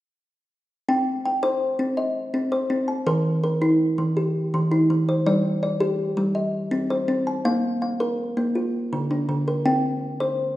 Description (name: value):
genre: southern african traditional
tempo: 109 BPM (dotted quarters)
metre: 12/8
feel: straight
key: C equiheptatonic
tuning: A4 = 440 Hz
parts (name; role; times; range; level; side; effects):
- kalimba; arpeggios; 0.9-10.6 s; D3-29c to A5-43c; -21 LUFS; equal; none
room: wet recital hall reverb, RT60 1.5 s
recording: minimal, uncompressed stereo recording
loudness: -21 LUFS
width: side -15 dB against mid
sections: 0.9-10.6 A section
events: none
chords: 0.9 Cm; 3.1 Eb; 5.3 G5; 6.4 Cm; 7.5 Bb5; 8.6 Dm; 9.7 C5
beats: | 0.88 1.43 1.97 2.52 | 3.07 3.62 4.16 4.71 | 5.26 5.81 6.36 6.91 | 7.45 8.00 8.55 9.10 | 9.65 10.20